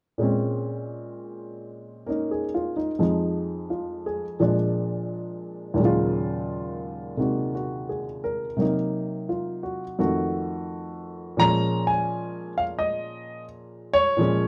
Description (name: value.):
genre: solo jazz.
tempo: 86 BPM.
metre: 4/4.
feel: swing 68% on 8ths.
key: Bb minor.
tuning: A4 = 441 Hz.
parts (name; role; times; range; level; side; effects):
warm baby grand piano; solo; 0.2-14.5 s; Eb2 to Bb5; -26 LUFS; equal; none.
room: light reverb.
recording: dark, warm production.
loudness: -26 LUFS.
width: mono.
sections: 0.2-11.4 A section; 11.4-14.5 B section.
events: none.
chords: 0.2 Bbm9; 3.0 Fm7; 4.4 Bb7; 5.8 Ebm11; 8.6 Cm7b5; 10.0 F7b9; 11.4 Bbm7.